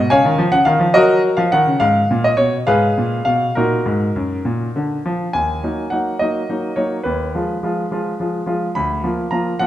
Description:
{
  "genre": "classical-period piano sonatina",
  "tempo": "70 BPM (dotted quarters)",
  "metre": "6/8",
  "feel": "rubato",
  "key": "Eb minor",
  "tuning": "A4 = 440 Hz",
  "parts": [
    { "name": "clear grand piano", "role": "solo", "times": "0.0-9.7 s", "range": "D2 to Cb6", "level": "-15 LUFS", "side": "equal", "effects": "none" }
  ],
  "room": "moderate recital hall reverb, RT60 1.5 s",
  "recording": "minimal, uncompressed stereo recording",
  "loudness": "-15 LUFS",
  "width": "side -13 dB against mid",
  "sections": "0.0-5.3 A section; 5.3-9.7 B section",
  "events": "none",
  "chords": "0.1 Db; 1.0 Gb; 1.8 Abm; 3.6 Ebm; 4.5 Bb; 5.3 Ebm; 7.1 Fm7b5/Eb; 8.8 Bb/D"
}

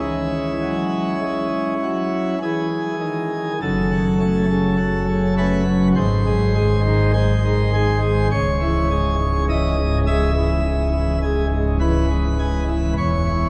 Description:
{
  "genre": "classical, chorale-style piece for pipe organ",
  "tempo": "51 BPM",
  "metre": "4/4",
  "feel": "straight",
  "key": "C# minor",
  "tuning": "A4 = 440 Hz",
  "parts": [
    { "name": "pipe organ, plenum", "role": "solo", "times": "0.0-13.5 s", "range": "C#1 to E5", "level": "-20 LUFS", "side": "equal", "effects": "none" }
  ],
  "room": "wet cathedral reverb, RT60 4.4 s",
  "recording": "recorded in a church or concert hall, vinyl crackle",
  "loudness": "-20 LUFS",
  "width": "mono",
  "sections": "0.0-3.6 A section; 3.6-13.5 B section",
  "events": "none",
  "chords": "0.0 C#m; 3.6 F#m; 6.0 G#; 8.3 C#m; 13.0 C#m/E"
}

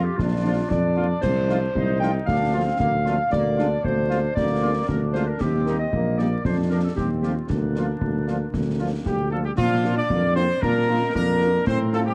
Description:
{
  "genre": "military-style march for wind band",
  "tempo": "115 BPM",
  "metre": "2/4",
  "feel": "straight",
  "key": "Bb major",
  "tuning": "A4 = 444 Hz",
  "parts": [
    { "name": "bright trumpet section", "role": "melody", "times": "0.0-12.1 s", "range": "D4 to D5", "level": "-30 LUFS", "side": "equal", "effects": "analog delay" },
    { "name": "clear woodwind section", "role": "second line", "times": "0.0-12.1 s", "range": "D4 to G5", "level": "-29 LUFS", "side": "equal", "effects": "none" },
    { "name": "clear trombone section", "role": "sustained chords", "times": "0.0-12.1 s", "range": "A3 to F4", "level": "-36 LUFS", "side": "equal", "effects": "none" },
    { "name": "warm tuba", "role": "bass", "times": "0.0-12.1 s", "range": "Bb1 to Bb2", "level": "-26 LUFS", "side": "equal", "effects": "none" },
    { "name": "concert snare drum, concert bass drum and clash cymbals", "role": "drums", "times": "0.2-12.1 s", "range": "none", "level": "-31 LUFS", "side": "equal", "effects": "none" },
    { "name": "mellow French horn section", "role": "accompaniment", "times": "0.4-12.0 s", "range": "F3 to F4", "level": "-34 LUFS", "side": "equal", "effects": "none" },
    { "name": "mellow euphonium", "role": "second line", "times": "9.1-12.1 s", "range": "F3 to D4", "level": "-33 LUFS", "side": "equal", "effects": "none" },
    { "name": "wooden piccolo", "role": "second line", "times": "9.1-12.1 s", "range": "F5 to D6", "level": "-39 LUFS", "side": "equal", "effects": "none" }
  ],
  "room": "light reverb, small room ambience",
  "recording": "dark, warm production, vinyl crackle",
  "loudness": "-22 LUFS",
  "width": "mono",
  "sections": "0.0-9.6 A section; 9.6-12.1 A section",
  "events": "none",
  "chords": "0.0 Bb; 1.2 F7/C; 2.3 Bb/D; 3.3 Bb7/D; 5.4 Eb; 6.4 Bb/F; 7.0 F7/Eb; 7.5 Bb/D; 9.6 Bb"
}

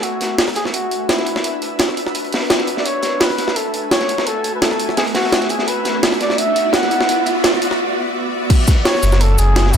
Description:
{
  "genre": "liquid drum and bass",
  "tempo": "170 BPM",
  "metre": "4/4",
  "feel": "straight",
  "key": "F# minor",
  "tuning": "A4 = 440 Hz",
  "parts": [
    { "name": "breathy flugelhorn", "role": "melody", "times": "0.0-9.8 s", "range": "E4 to F#5", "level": "-21 LUFS", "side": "equal", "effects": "low-pass filter, digital delay" },
    { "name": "shimmering ambient pad", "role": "sustained chords", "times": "0.0-9.8 s", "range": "E3 to G#5", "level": "-22 LUFS", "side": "equal", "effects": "chorus, built-in reverb" },
    { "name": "crunchy breakbeat drum kit", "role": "drums", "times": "0.0-9.8 s", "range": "hi-hat, snare drum", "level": "-23 LUFS", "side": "equal", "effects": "high-pass filter on hats, high-pass filter on snare, high-pass filter on room" },
    { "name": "jungle sampler-style drum kit", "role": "drums", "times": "0.0-9.8 s", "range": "cabasa, crash cymbal, hi-hat, snare drum", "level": "-19 LUFS", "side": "right 1 dB", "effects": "none" },
    { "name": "riser", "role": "sound effects", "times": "4.6-7.8 s", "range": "none", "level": "-24 LUFS", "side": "right 1 dB", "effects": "none" },
    { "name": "electronic kick drum", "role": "drums", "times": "8.5-8.8 s", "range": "none", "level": "-11 LUFS", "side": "equal", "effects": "none" },
    { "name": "sub bass with octave", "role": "bass", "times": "9.0-9.8 s", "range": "F#1 to F#2", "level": "-12 LUFS", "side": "equal", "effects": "none" }
  ],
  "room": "light reverb, small room reverb",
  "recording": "none",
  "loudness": "-14 LUFS",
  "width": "side -8 dB against mid",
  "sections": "0.0-8.5 A section; 8.5-9.8 B section",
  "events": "build-up 0.0-8.5; filter sweep on ambient pad 0.0-8.5; riser 4.6-7.8; break 7.8-8.5; drop 8.5-9.8",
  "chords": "0.0 D69; 2.9 F#m9; 5.7 D69; 8.5 F#m9"
}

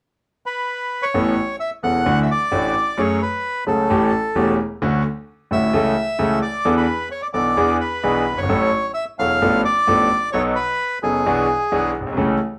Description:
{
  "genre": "tango",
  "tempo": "131 BPM",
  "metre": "4/4",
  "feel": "rubato",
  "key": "A major",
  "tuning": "A4 = 438 Hz",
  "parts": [
    { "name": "bandoneon", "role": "melody", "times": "0.5-11.9 s", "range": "G#4 to F#5", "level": "-23 LUFS", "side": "equal", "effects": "none" },
    { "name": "bright concert grand piano", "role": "accompaniment", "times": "1.1-12.4 s", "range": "E1 to A4", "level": "-21 LUFS", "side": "equal", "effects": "none" }
  ],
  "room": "wet small room reverb, RT60 0.5 s",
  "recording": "band playing live in one room",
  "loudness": "-20 LUFS",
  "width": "mono",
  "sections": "0.0-1.1 A section; 1.1-12.6 B section",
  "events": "none",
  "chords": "0.0 N.C.; 1.1 Aadd9; 2.1 Dadd9; 3.0 F#madd9; 3.9 A7; 4.8 Dmaj7; 5.7 A/C#; 6.7 E7sus4; 7.6 E7; 8.5 A6; 9.4 Dm6/A; 10.3 B7; 11.3 E7/B"
}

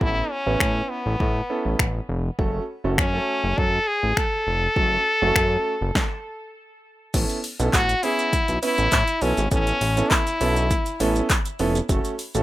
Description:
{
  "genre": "dance-pop",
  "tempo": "101 BPM",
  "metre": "4/4",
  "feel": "straight",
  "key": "A major",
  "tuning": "A4 = 439 Hz",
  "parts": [
    { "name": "stopped French horn", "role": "melody", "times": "0.0-11.3 s", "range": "B3 to A4", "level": "-23 LUFS", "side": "left 1 dB", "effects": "tape echo" },
    { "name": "warm concert grand piano", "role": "accompaniment", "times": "0.0-12.4 s", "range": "A3 to B4", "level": "-27 LUFS", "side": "right 3 dB", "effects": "sidechain pumping" },
    { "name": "fat analog bass", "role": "bass", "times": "0.0-12.4 s", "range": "F1 to A2", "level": "-24 LUFS", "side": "equal", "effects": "sidechain pumping" },
    { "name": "deep house drum kit", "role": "drums", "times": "0.0-12.4 s", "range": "crash cymbal, finger snaps, handclaps, hi-hat, kick drum, shaker, snare drum", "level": "-23 LUFS", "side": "equal", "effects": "none" }
  ],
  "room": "little or no reverb",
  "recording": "rough home demo mix",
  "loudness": "-20 LUFS",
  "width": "side -15 dB against mid",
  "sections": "0.0-7.1 A section; 7.1-12.4 B section",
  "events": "stop 6.0-7.1",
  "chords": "0.0 Aadd9; 2.4 F#m; 6.8 N.C.; 7.1 Aadd9; 11.9 F#m"
}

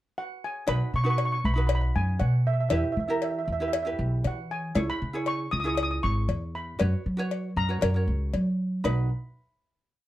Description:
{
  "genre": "calypso",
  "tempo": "117 BPM",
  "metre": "4/4",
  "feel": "straight",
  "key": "B major",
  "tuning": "A4 = 440 Hz",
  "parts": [
    { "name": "steel pan", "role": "melody", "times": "0.2-9.1 s", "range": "E5 to D#6", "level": "-31 LUFS", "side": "right 1 dB", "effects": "none" },
    { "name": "ukulele", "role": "accompaniment", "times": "0.7-9.1 s", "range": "D#4 to C#5", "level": "-32 LUFS", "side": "right 2 dB", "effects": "none" },
    { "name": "upright bass", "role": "bass", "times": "0.7-9.1 s", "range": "G#1 to F#3", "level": "-26 LUFS", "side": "equal", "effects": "none" },
    { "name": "cowbell", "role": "percussion", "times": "0.7-9.1 s", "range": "none", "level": "-31 LUFS", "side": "left 7 dB", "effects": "none" }
  ],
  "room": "light reverb",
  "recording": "dark, warm production",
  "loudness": "-25 LUFS",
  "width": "side -14 dB against mid",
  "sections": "0.0-0.7 pickup bar; 0.7-8.8 verse; 8.8-10.1 final chord",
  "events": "none",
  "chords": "0.0 N.C.; 0.7 B; 2.7 Em; 4.8 C#m; 6.8 F#sus4; 7.8 F#; 8.8 B"
}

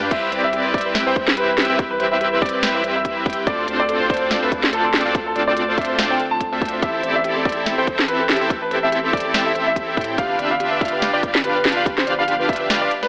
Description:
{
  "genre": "future bass",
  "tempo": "143 BPM",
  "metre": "4/4",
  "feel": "swing 56% on 16ths, half-time",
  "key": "unclear",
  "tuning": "A4 = 440 Hz",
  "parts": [
    { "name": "clear grand piano", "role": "melody", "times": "0.0-13.1 s", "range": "A4 to A5", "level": "-23 LUFS", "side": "equal", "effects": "sidechain pumping, digital delay" },
    { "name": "thumb-piano-like synth pluck", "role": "arpeggios", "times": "0.0-13.1 s", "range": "G4 to C6", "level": "-28 LUFS", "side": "equal", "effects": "chorus, sidechain pumping, digital delay" },
    { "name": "big bright polysynth", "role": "riff", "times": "0.0-12.9 s", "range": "C4 to G5", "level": "-20 LUFS", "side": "equal", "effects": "chorus, sidechain pumping" },
    { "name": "saturated sub bass", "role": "bass", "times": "0.0-12.9 s", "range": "G1 to A2", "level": "-34 LUFS", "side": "equal", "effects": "sidechain pumping" },
    { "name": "ethereal airy pad", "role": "sustained chords", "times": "1.5-13.1 s", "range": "D3 to B4", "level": "-34 LUFS", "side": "equal", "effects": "none" },
    { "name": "electronic kick drum", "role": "drums", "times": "0.1-12.6 s", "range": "none", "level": "-22 LUFS", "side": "equal", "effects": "none" },
    { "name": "trap drum kit", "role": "drums", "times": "0.1-13.1 s", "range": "crash cymbal, hi-hat, snare drum", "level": "-21 LUFS", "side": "equal", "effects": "none" }
  ],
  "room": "light reverb, digital ambience",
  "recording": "AM radio sound",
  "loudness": "-16 LUFS",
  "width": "side -27 dB against mid",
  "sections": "0.1-13.1 A section",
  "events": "drop 0.1-13.1",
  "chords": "0.1 Cmaj7; 3.5 Dm7; 6.8 Am7; 10.2 G7"
}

